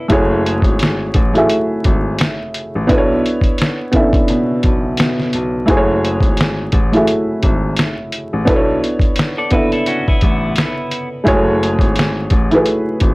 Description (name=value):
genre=lo-fi hip hop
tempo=86 BPM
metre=4/4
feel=swing 57% on 16ths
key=F# minor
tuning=A4 = 440 Hz
part: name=electric guitar at the edge of break-up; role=second line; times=0.0-0.1, 9.4-11.1 s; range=B3 to D5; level=-22 LUFS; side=equal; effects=low-pass filter, tape echo
part: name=felt-muted upright piano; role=accompaniment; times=0.0-13.1 s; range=G#3 to E5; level=-16 LUFS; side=equal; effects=cassette tape, low-pass filter
part: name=dark baby grand piano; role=bass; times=0.1-13.1 s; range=F#1 to B2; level=-19 LUFS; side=left 1 dB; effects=none
part: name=lo-fi sampler-style drum kit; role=drums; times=0.1-13.1 s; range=finger snaps, hi-hat, kick drum, snare drum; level=-16 LUFS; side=equal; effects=none
room=little or no reverb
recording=dry, gritty hardware recording, transformer saturation, vinyl crackle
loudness=-13 LUFS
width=side -23 dB against mid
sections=0.0-13.1 A section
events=none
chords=0.1 F#m9; 2.9 Bm11; 5.7 F#m9; 8.5 Bm11; 11.3 F#m9